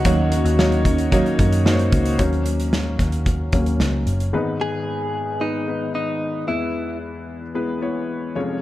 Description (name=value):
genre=piano-driven pop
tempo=112 BPM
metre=4/4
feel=straight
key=G# minor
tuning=A4 = 440 Hz
part: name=direct-recorded clean electric guitar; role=melody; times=0.0-7.0 s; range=D#4 to G#4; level=-26 LUFS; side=left 1 dB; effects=wide subtle chorus
part: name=clear concert grand piano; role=accompaniment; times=0.0-8.6 s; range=E#1 to C#5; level=-23 LUFS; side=left 2 dB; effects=none
part: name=fingerpicked steel-string acoustic guitar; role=riff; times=0.0-2.7 s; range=D#3 to A#4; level=-25 LUFS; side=right 5 dB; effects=none
part: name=vintage muted picked electric bass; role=bass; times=0.0-4.3 s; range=F#1 to F#2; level=-21 LUFS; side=equal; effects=none
part: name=loose indie drum kit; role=drums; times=0.0-4.3 s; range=hi-hat, kick drum, snare drum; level=-22 LUFS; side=equal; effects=none
room=light reverb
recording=dark, warm production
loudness=-18 LUFS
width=side -15 dB against mid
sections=0.0-2.2 A section; 2.2-4.3 B section; 4.3-8.6 C section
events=grand piano solo 2.2-4.3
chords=0.1 D#m7; 4.3 G#m; 6.5 E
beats=| 0.05 0.59 1.12 1.66 | 2.19 2.73 3.26 3.80 | 4.33 4.87 5.41 5.94 | 6.48 7.01 7.55 8.09